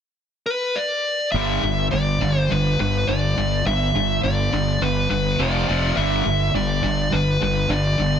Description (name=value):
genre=rock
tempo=104 BPM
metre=4/4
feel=straight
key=G mixolydian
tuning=A4 = 442 Hz
part: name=dark smooth lead guitar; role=melody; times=0.5-8.2 s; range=B4 to E5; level=-22 LUFS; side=left 1 dB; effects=overdrive
part: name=cranked stack guitar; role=riff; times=1.3-8.2 s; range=F2 to G3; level=-26 LUFS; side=right 10 dB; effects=overdrive, phaser
part: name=distorted electric guitar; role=riff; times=1.3-8.2 s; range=F2 to G3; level=-25 LUFS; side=left 8 dB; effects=overdrive
part: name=fuzz fingered electric bass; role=bass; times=1.3-8.2 s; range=F1 to G1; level=-24 LUFS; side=equal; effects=overdrive
room=light reverb, digital ambience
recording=dense, heavily limited modern master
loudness=-18 LUFS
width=side -8 dB against mid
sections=0.0-1.3 A section; 1.3-8.2 B section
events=none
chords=0.0 N.C.; 1.3 G5; 5.4 F5; 6.0 G